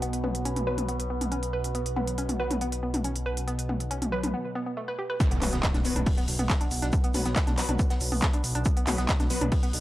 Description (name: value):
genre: driving peak-time techno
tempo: 139 BPM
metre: 4/4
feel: straight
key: unclear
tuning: A4 = 440 Hz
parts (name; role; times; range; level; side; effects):
- woody wave-folded pluck; riff; 0.0-9.7 s; A3 to B4; -34 LUFS; right 1 dB; chorus, overdrive, sidechain pumping, analog delay
- dark detuned saw bass; bass; 0.0-9.8 s; B1; -31 LUFS; equal; sidechain pumping
- overtone-sweeping drone; drone; 0.0-9.8 s; B2 to B3; -38 LUFS; right 1 dB; chorus, built-in reverb, phaser, sidechain pumping
- techno drum kit; drums; 0.0-9.8 s; handclaps, hi-hat, toms; -31 LUFS; equal; sidechain pumping on hats, sidechain pumping on toms, sidechain pumping on cymbals
- sub drop and impact; sound effects; 0.0, 5.2-6.9 s; none; -36 LUFS; equal; none
- deep dark ambient pad; texture; 0.0-4.3 s; F#4 to B5; -40 LUFS; right 1 dB; chorus, built-in reverb, sidechain pumping
- rave stab; stabs; 0.2-9.4 s; F#3 to B4; -35 LUFS; left 2 dB; chorus, built-in reverb, sidechain pumping, analog delay
- electronic kick drum; drums; 5.2-9.6 s; none; -26 LUFS; equal; none
- warm soul drum kit; drums; 5.2-9.8 s; hi-hat, shaker, snare drum; -42 LUFS; equal; high-pass filter on hats, high-pass filter on snare, high-pass filter on perc, high-pass filter on room
room: light reverb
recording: cassette tape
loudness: -25 LUFS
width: side -15 dB against mid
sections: 0.0-5.2 A section; 5.2-9.8 B section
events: filter sweep on synth stab 0.0-5.2; break 4.3-5.2; drop 5.2-9.8; impact 5.2-6.9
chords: 0.0 B5